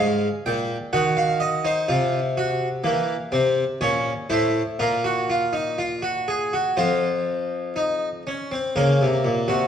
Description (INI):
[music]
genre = classical, baroque-style 3-part fugue for harpsichord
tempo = 62 BPM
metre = 4/4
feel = straight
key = unclear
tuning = A4 = 440 Hz
[part]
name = harpsichord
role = solo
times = 0.0-9.7 s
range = F2 to G5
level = -20 LUFS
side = equal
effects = none
[sound]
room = wet recital hall reverb, RT60 1.4 s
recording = worn, warbling old tape, cassette tape, warbly pitch drift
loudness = -20 LUFS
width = side -8 dB against mid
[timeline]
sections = 0.0-8.8 A section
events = none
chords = 0.0 Fm; 0.9 Cdim/Eb; 2.8 C13b9; 4.8 Fsus4/Bb; 6.8 F5; 8.8 Bbm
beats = | 0.93 1.89 2.85 3.82 | 4.79 5.79 6.78 7.77 | 8.76